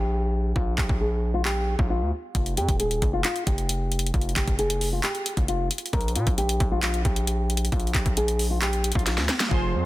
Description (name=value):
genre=hip hop, trap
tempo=134 BPM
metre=4/4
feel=half-time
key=unclear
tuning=A4 = 444 Hz
part: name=nylon-string guitar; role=melody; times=0.0-9.3 s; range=F4 to Bb4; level=-29 LUFS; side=left 1 dB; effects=low-pass filter, tape echo
part: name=distorted 808-style bass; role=bass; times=0.0-9.8 s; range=Eb1 to Bb2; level=-26 LUFS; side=equal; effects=distortion
part: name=trap drum kit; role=drums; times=0.6-9.6 s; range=handclaps, hi-hat, kick drum, snare drum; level=-26 LUFS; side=equal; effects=none
part: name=glassy digital keys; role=accompaniment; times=9.5-9.9 s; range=F3 to C5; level=-25 LUFS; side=right 2 dB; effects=chorus, low-pass filter
room=digital ambience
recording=dense, heavily limited modern master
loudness=-22 LUFS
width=side -17 dB against mid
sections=0.0-9.9 A section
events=break 0.0-2.3; filter sweep 0.0-9.5; drum fill 9.1-9.5; hi-hats muted 9.5-9.9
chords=0.0 Bb5; 2.3 Ebadd9 (rootless); 5.9 Bb5